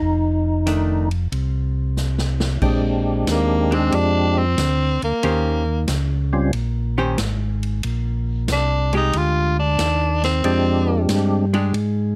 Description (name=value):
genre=soul jazz organ trio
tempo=92 BPM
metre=4/4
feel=swing 68% on 8ths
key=Bb mixolydian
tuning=A4 = 440 Hz
part: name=percussive tonewheel organ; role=melody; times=0.0-6.5, 10.4-11.5 s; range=G3 to G4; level=-23 LUFS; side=equal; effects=chorus vibrato, slow rotary speaker
part: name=tonewheel organ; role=bass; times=0.0-12.2 s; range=F1 to Ab2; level=-23 LUFS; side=equal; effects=none
part: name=archtop guitar, miked and amplified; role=accompaniment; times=0.7-11.7 s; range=Eb3 to C5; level=-26 LUFS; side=equal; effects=none
part: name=swinging big-band drum kit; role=drums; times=0.7-11.9 s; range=crash cymbal, hi-hat, kick drum, ride cymbal, snare drum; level=-30 LUFS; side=equal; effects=none
part: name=growling tenor saxophone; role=melody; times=3.3-11.1 s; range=Bb3 to F4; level=-24 LUFS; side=equal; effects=none
room=little or no reverb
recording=close, detailed microphones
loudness=-20 LUFS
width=mono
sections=0.0-2.6 A section; 2.6-12.2 B section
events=drum fill 2.0-2.6; tenor saxophone solo 2.6-12.2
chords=0.0 F6; 2.6 Bb13; 5.2 Eb13; 7.8 Bb13